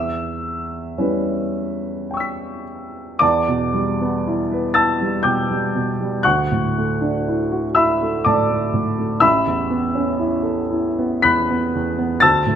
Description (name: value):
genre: classical, impressionist solo piano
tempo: 60 BPM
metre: 3/4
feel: uneven beats, rubato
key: E dorian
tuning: A4 = 442 Hz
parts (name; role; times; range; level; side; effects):
- warm baby grand piano; solo; 0.0-12.6 s; A1 to B6; -17 LUFS; equal; none
room: moderate recital hall reverb, RT60 1.3 s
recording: close, detailed microphones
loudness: -17 LUFS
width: side -8 dB against mid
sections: 0.0-3.2 A section; 3.2-12.6 B section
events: none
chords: 0.0 Em6; 3.2 Em7; 6.2 Dadd9; 9.2 Aadd9